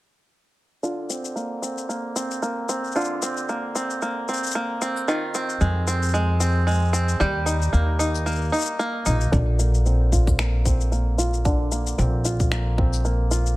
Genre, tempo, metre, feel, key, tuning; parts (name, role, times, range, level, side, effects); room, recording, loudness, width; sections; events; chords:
folktronica; 113 BPM; 4/4; swing 56% on 16ths; Bb mixolydian; A4 = 440 Hz
bluegrass banjo; arpeggios; 0.8-13.6 s; D3 to G4; -25 LUFS; right 1 dB; vintage 12-bit sampler grit, low-pass filter, tape echo
electronic shaker and finger snaps; drums; 0.8-13.6 s; -31 LUFS; left 6 dB; studio reverb
upright bass; bass; 5.6-13.6 s; Bb1 to F2; -21 LUFS; equal
electronic kick drum; drums; 9.3-12.9 s; -22 LUFS; equal; studio reverb
studio reverb; -20 LUFS; side -18 dB against mid
0.8-9.3 A section; 9.3-13.6 B section
filter sweep on five-string banjo 0.8-9.3, 9.3-13.6
0.8 Bbadd9; 5.1 Fm7; 7.2 Eb; 9.3 Bbadd9